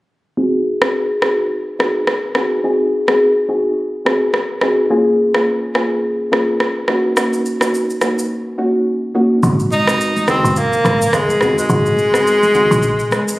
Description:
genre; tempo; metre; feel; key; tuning
afrobeats; 106 BPM; 4/4; swing 58% on 16ths; unclear; A4 = 441 Hz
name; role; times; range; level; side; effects
soft round pluck; accompaniment; 0.4-12.8 s; Ab3 to Ab4; -16 LUFS; equal; chorus, low-pass filter
electronic rim click and shaker; drums; 0.8-13.4 s; none; -19 LUFS; equal; none
woody log drum bass; bass; 9.4-12.9 s; Gb1 to Bb1; -17 LUFS; equal; none
congas; percussion; 9.4-13.3 s; none; -24 LUFS; equal; none
breathy tenor saxophone; melody; 9.7-13.4 s; Ab3 to Eb4; -14 LUFS; equal; none
room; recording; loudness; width
moderate plate reverb, RT60 1.9 s; recorded on a phone in the room, club reverb, compression; -13 LUFS; side -18 dB against mid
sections
0.4-9.4 A section; 9.4-13.4 B section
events
filter sweep on synth pluck 0.4-9.4; kick muted 9.4-13.4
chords
0.4 Ab7; 4.9 Bbm7; 6.9 Ebm7; 9.4 Ab7

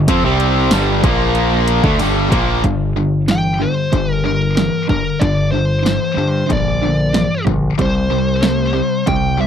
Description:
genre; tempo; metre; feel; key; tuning
classic rock; 93 BPM; 4/4; straight; G dorian; A4 = 440 Hz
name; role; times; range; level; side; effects
crunchy overdriven guitar; riff; 0.0-9.5 s; G2 to C4; -21 LUFS; right 13 dB; none
overdriven electric guitar; riff; 0.0-2.6 s; G2 to C4; -21 LUFS; equal; spring reverb
tight distorted guitar; riff; 0.0-9.5 s; G2 to C4; -19 LUFS; left 11 dB; distortion
growling picked electric bass; bass; 0.0-9.5 s; G1 to G2; -19 LUFS; equal; overdrive
punchy analog drum machine; drums; 0.1-9.2 s; hi-hat, kick drum, snare drum; -19 LUFS; equal; overdrive
tambourine; percussion; 0.7-2.1 s; none; -34 LUFS; right 9 dB; none
bluesy overdriven lead guitar; melody; 3.3-9.5 s; Bb4 to G5; -20 LUFS; equal; distortion
room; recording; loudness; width
little or no reverb; dry, close 1970s-style studio recording; -13 LUFS; side -8 dB against mid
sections
0.0-2.6 A section; 2.6-9.5 B section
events
kick and snare drop out 2.0-2.6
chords
0.0 G5; 1.0 Bb5; 1.8 Gm; 7.8 C5

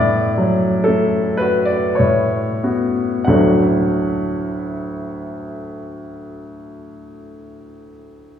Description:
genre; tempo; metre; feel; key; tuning
classical, romantic nocturne for solo piano; 43-62 BPM; 3/4; rubato; D major; A4 = 440 Hz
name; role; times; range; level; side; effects
warm baby grand piano; solo; 0.0-8.4 s; D2 to F#5; -17 LUFS; equal; none
room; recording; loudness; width
wet concert hall reverb, RT60 2.4 s; heard from further back in the room, small room ambience; -15 LUFS; side -9 dB against mid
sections
0.0-3.3 A section; 3.3-6.8 B section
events
slowing down 0.0-3.3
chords
0.0 D/A; 2.0 A69; 3.3 D

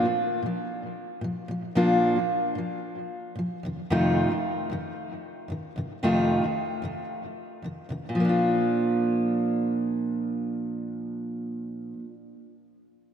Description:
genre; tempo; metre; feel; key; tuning
pop; 113 BPM; 4/4; straight; Bb major; A4 = 444 Hz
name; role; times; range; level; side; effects
fingerpicked steel-string acoustic guitar; solo; 0.0-12.1 s; F2 to F4; -25 LUFS; equal; analog delay
room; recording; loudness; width
wet plate reverb, RT60 3.3 s; dreamy mix soaked in reverb; -24 LUFS; side -8 dB against mid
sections
0.0-8.2 A section; 8.2-12.4 B section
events
none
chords
0.0 Bb5; 3.6 F7; 8.2 Bb

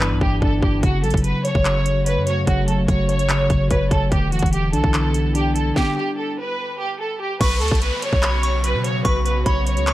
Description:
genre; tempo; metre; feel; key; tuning
hip hop, trap; 146 BPM; 4/4; half-time; B minor; A4 = 440 Hz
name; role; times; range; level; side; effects
clear studio violin section; melody; 0.0-9.9 s; F#4 to C#5; -24 LUFS; right 1 dB; low-pass filter, tape echo
mellow tine electric piano; accompaniment; 0.0-6.4 s; G2 to C#5; -21 LUFS; equal; low-pass filter
glassy FM pad; sustained chords; 0.0-9.9 s; C#3 to F#4; -30 LUFS; equal; ensemble chorus, built-in reverb
warm 808-style bass; bass; 0.0-9.9 s; E1 to B2; -22 LUFS; equal; none
trap drum kit; drums; 0.0-9.9 s; crash cymbal, handclaps, hi-hat, kick drum, snare drum; -22 LUFS; equal; overdrive
delicate synth tine bell; second line; 7.4-9.9 s; B5 to C#6; -27 LUFS; equal; chorus, tape echo
downlifter; sound effects; 7.4-9.9 s; none; -30 LUFS; equal; none
room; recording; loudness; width
little or no reverb; dry, gritty hardware recording; -17 LUFS; side -15 dB against mid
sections
0.0-7.4 A section; 7.4-9.9 B section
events
break 0.0-0.8; stop 5.8-7.4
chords
0.0 G6; 0.8 F#m; 4.1 Em7; 7.4 Bsus2

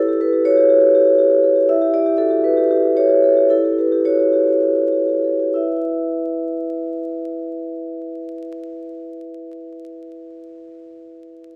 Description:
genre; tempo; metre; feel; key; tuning
classical, contemporary piece for solo vibraphone; 189-247 BPM (eighths); 7/8; rubato; E minor; A4 = 440 Hz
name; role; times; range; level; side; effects
vibraphone with medium mallets; solo; 0.0-11.6 s; E4 to E5; -18 LUFS; equal; none
room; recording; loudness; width
wet scoring stage reverb, RT60 1.6 s; vinyl crackle; -17 LUFS; mono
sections
0.0-5.6 A section; 5.6-9.9 B section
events
slowing down 0.8-5.6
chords
0.0 Em6; 5.6 E5

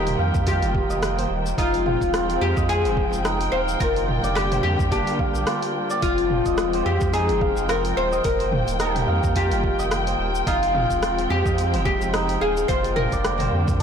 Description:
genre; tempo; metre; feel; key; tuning
organic downtempo; 108 BPM; 4/4; swing 56% on 16ths; F dorian; A4 = 440 Hz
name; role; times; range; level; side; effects
oud; melody; 0.0-13.8 s; F4 to C5; -24 LUFS; left 2 dB; digital delay
dark chamber string section; sustained chords; 0.0-13.8 s; D3 to G5; -28 LUFS; left 2 dB; sidechain pumping
santur; arpeggios; 0.0-13.8 s; C4 to F5; -27 LUFS; right 3 dB; digital delay
warm sub bass; bass; 0.0-13.8 s; Eb1 to F2; -26 LUFS; right 1 dB; tube saturation, sidechain pumping
deep house drum kit; drums; 0.1-13.8 s; hi-hat, rim click, shaker, toms; -29 LUFS; right 1 dB; none
electronic kick drum; drums; 0.3-13.8 s; none; -26 LUFS; right 1 dB; overdrive
room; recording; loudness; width
moderate lush hall reverb, RT60 1.9 s; blown-out, overdriven recording, overdrive; -19 LUFS; side -7 dB against mid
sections
0.0-13.8 A section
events
none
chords
0.0 Eb; 1.6 Fmadd9; 3.8 Gm/F; 6.0 Fmadd9; 8.2 Eb; 10.5 Fmadd9; 12.7 Gm/F

